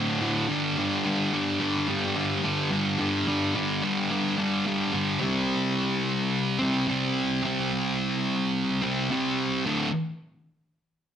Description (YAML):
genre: rock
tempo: 108 BPM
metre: 4/4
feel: straight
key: unclear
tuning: A4 = 440 Hz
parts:
  - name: thick fuzz guitar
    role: solo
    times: 0.0-9.9 s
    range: D2 to C4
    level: -24 LUFS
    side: equal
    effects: distortion
room: moderate large studio reverb, RT60 0.9 s, digital ambience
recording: dense, heavily limited modern master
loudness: -24 LUFS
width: side -9 dB against mid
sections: 0.0-5.2 A section; 5.2-9.7 B section; 9.7-11.2 C section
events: none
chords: 0.5 G5; 5.2 C5; 9.7 D5